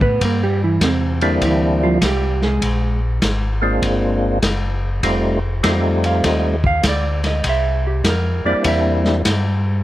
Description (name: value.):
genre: soul jazz organ trio.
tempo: 100 BPM.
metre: 4/4.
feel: swing 67% on 8ths.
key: unclear.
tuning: A4 = 440 Hz.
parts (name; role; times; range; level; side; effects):
hollow-body jazz guitar; accompaniment; 0.0-8.9 s; C3 to F5; -21 LUFS; right 3 dB; none.
mellow tonewheel organ; bass; 0.0-9.8 s; F1 to A2; -20 LUFS; left 1 dB; slow rotary speaker.
vintage drum kit; drums; 0.0-9.4 s; hi-hat, kick drum, ride cymbal, snare drum; -22 LUFS; left 1 dB; none.
percussive tonewheel organ; melody; 1.2-9.2 s; G3 to F4; -19 LUFS; equal; slow rotary speaker, chorus vibrato.
room: little or no reverb.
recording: none.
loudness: -15 LUFS.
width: side -14 dB against mid.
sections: 0.0-9.8 A section.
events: hollow-body jazz guitar solo 0.0-9.8.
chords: 0.0 C7; 2.6 Bb7; 5.0 F7; 7.4 C7.